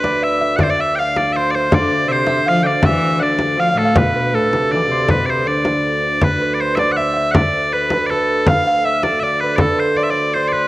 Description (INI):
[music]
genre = medieval dance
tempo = 160 BPM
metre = 3/4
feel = straight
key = D dorian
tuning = A4 = 440 Hz
[part]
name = loud bright bagpipes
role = melody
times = 0.0-10.7 s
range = A4 to G5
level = -18 LUFS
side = equal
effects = none
[part]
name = concert harp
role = second line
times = 0.0-10.7 s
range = A4 to F5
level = -19 LUFS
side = right 1 dB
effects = none
[part]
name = pedal harmonium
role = drone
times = 0.0-10.7 s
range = D2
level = -26 LUFS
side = right 1 dB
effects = stereo widening
[part]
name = frame drum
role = percussion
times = 0.0-10.6 s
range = none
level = -17 LUFS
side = left 1 dB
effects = none
[part]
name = rich viola da gamba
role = second line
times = 1.7-6.0 s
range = A2 to F3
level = -21 LUFS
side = left 2 dB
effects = none
[sound]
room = moderate spring reverb, RT60 1.7 s, studio reverb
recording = home recording on cassette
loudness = -14 LUFS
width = side -18 dB against mid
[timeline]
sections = 0.0-6.2 A section; 6.2-10.7 B section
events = none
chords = none